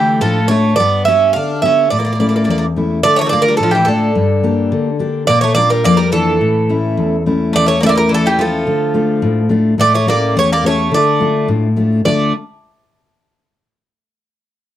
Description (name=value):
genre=greek folk, Greek bouzouki band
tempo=106 BPM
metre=2/4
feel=straight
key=D harmonic minor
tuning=A4 = 440 Hz
part: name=Greek bouzouki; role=melody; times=0.0-12.3 s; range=G4 to F5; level=-14 LUFS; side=right 4 dB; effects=none
part: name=Greek bouzouki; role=second line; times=0.0-12.3 s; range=D3 to D4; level=-21 LUFS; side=left 3 dB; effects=none
part: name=fingerpicked steel-string acoustic guitar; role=accompaniment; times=0.0-12.3 s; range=E2 to A4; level=-15 LUFS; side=left 2 dB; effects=none
room=light reverb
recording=dry, close 1970s-style studio recording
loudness=-12 LUFS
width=side -12 dB against mid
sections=0.0-3.0 A section; 3.0-12.1 B section; 12.1-13.2 C section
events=none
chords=0.0 Dm; 0.8 G; 1.9 A; 3.0 Dm; 4.2 Gm; 5.3 Bb; 6.4 A; 8.7 Dm; 9.8 A7; 10.9 Dm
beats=0.22 | 0.78 1.34 | 1.91 2.47 | 3.03 3.60 | 4.16 4.72 | 5.29 5.85 | 6.42 6.98 | 7.55 8.11 | 8.68 9.24 | 9.80 10.37 | 10.94 11.50 | 12.07